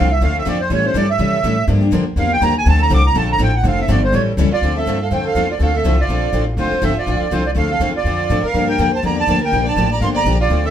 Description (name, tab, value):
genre	acoustic string swing (jazz manouche)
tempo	245 BPM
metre	4/4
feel	swing 56% on 8ths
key	D minor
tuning	A4 = 445 Hz
part	accordion	melody	0.0-10.7 s	C5 to D6	-19 LUFS	right 3 dB	light tremolo tuning
part	picked steel-string acoustic guitar	accompaniment	0.0-10.7 s	D3 to A4	-22 LUFS	left 6 dB	none
part	picked steel-string acoustic guitar	accompaniment	0.0-10.7 s	D3 to A4	-25 LUFS	right 2 dB	none
part	upright bass	bass	0.0-10.7 s	F1 to B#2	-18 LUFS	equal	none
part	warm violin	second line	4.5-10.7 s	F4 to F5	-24 LUFS	right 2 dB	none
room	moderate studio reverb, RT60 0.6 s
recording	band playing live in one room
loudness	-14 LUFS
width	side -10 dB against mid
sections	0.0-4.6 A section; 4.6-10.7 B section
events	accordion solo 0.0-4.6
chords	0.0 Dm7; 0.7 A7#9; 1.7 Gm7; 2.7 Dm7; 4.1 A7; 4.6 Dm7; 8.5 Gm7